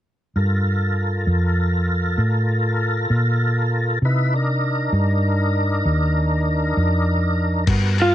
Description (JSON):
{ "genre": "slow blues", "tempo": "66 BPM (dotted quarters)", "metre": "12/8", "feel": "straight", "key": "G minor", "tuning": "A4 = 441 Hz", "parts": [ { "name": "tonewheel organ", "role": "sustained chords", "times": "0.4-8.1 s", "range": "B3 to A5", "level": "-23 LUFS", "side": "equal", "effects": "slow rotary speaker, overdrive, chorus vibrato" }, { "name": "hollow-body short-scale fingered electric bass", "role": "bass", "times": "0.4-8.1 s", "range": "Eb2 to C3", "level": "-19 LUFS", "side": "equal", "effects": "none" }, { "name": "lo-fi sampler-style drum kit", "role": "drums", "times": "7.7-8.1 s", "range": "crash cymbal, kick drum, ride cymbal", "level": "-22 LUFS", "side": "left 2 dB", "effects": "none" }, { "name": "electric slide guitar", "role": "melody", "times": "8.0-8.1 s", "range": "F4", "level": "-15 LUFS", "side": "right 1 dB", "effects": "none" } ], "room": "little or no reverb", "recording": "1960s-style stereo", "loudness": "-18 LUFS", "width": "side -12 dB against mid", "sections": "0.4-7.7 A section", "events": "none", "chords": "0.4 Gm7; 4.0 Cm7", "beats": "| 0.37 1.29 2.20 3.11 | 4.03 4.94 5.85 6.76 | 7.67" }